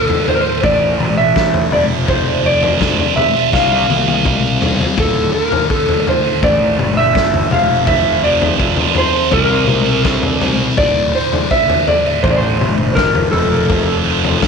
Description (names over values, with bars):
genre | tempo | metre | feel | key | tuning
psychedelic rock | 83 BPM | 4/4 | straight | D minor | A4 = 440 Hz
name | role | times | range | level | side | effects
electric slide guitar | melody | 0.0-14.0 s | A4 to F5 | -16 LUFS | right 1 dB | tape echo
thick fuzz guitar | riff | 0.0-14.5 s | D2 to C4 | -18 LUFS | right 3 dB | distortion, phaser
raw garage drum kit | drums | 0.1-14.5 s | kick drum, snare drum, toms | -18 LUFS | left 4 dB | none
fuzz picked electric bass | bass | 0.6-14.5 s | D1 to C2 | -19 LUFS | right 1 dB | overdrive
room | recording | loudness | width
light reverb, studio reverb | 1960s-style stereo | -12 LUFS | side -5 dB against mid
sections
0.0-14.5 A section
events
drum fill 3.5-5.0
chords
0.0 D5; 0.6 Asus4; 1.7 F5; 3.5 C5; 5.0 D5; 6.4 Asus4; 7.5 F5; 9.3 C5; 10.8 D5; 12.2 A5; 13.3 F